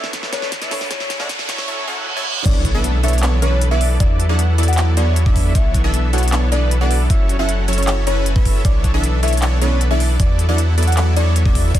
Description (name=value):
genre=future bass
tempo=155 BPM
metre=4/4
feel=half-time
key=B minor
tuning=A4 = 440 Hz
part: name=soft octave-layered synth lead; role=melody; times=0.0-11.8 s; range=B4 to F#5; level=-26 LUFS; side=left 1 dB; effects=chorus, phaser, sidechain pumping, ping-pong delay
part: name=soft round pluck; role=accompaniment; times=0.0-1.7 s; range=D4 to C#5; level=-36 LUFS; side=right 2 dB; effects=none
part: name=supersaw stab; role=riff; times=0.0-11.8 s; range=E3 to F#5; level=-22 LUFS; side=equal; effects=sidechain pumping
part: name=saturated sub bass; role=bass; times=0.0-11.8 s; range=F#1 to E2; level=-16 LUFS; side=equal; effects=tube saturation, sidechain pumping, high-pass filter
part: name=pop drum kit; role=drums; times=0.0-11.8 s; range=crash cymbal, handclaps, hi-hat, snare drum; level=-26 LUFS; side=equal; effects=none
part: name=riser, reverse cymbal and impact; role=sound effects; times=0.0-4.0 s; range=none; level=-26 LUFS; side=right 1 dB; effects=none
part: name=electronic kick drum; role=drums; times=0.1-11.8 s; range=none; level=-16 LUFS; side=equal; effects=none
room=little or no reverb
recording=dense, heavily limited modern master, high-pass filter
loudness=-14 LUFS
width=side -12 dB against mid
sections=0.0-2.5 A section; 2.5-11.8 B section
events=build-up 0.0-2.5; drum fill 0.0-1.7; riser 0.0-1.7; reverse cymbal 1.7-2.5; drop 2.5-11.8; impact 2.5-4.0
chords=0.0 Bm11; 0.9 F#m7; 2.5 Bm11; 4.0 E9sus4; 5.6 Bm11; 7.1 F#m7; 8.6 Bm11; 10.2 E9sus4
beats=0.13 0.52 | 0.91 1.29 1.68 2.07 | 2.46 2.84 3.23 3.62 | 4.00 4.39 4.78 5.17 | 5.55 5.94 6.33 6.71 | 7.10 7.49 7.87 8.26 | 8.65 9.04 9.42 9.81 | 10.20 10.58 10.97 11.36 | 11.74